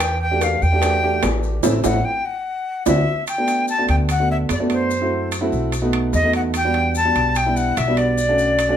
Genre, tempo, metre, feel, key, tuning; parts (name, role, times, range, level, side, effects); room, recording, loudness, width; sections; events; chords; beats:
Afro-Cuban jazz; 147 BPM; 4/4; straight; G major; A4 = 440 Hz
breathy bright jazz flute; melody; 0.0-8.8 s; C5 to A5; -20 LUFS; left 1 dB
upright bass; bass; 0.0-8.7 s; A1 to F#2; -22 LUFS; equal
bongos; percussion; 0.0-3.0 s; -28 LUFS; left 4 dB
maracas; percussion; 0.0-8.8 s; -34 LUFS; left 6 dB
timbales; percussion; 0.0-8.8 s; -26 LUFS; right 5 dB
warm upright piano; accompaniment; 0.3-8.8 s; G3 to G4; -22 LUFS; right 2 dB
wet club reverb, RT60 0.5 s; heard from further back in the room; -17 LUFS; side -9 dB against mid
0.0-3.3 A section; 3.3-8.8 B section
flute solo 0.0-3.3; band accent 1.6-3.3; drum fill 2.9-3.3
0.0 Em11; 1.6 Am; 2.5 D9; 3.3 Gmaj9; 4.9 F#m7b5; 5.7 B7; 6.5 Em7; 8.2 Bm7
| 0.01 0.42 0.83 1.23 | 1.64 2.05 2.46 2.87 | 3.27 3.68 4.09 4.50 | 4.91 5.32 5.73 6.14 | 6.54 6.95 7.36 7.77 | 8.18 8.59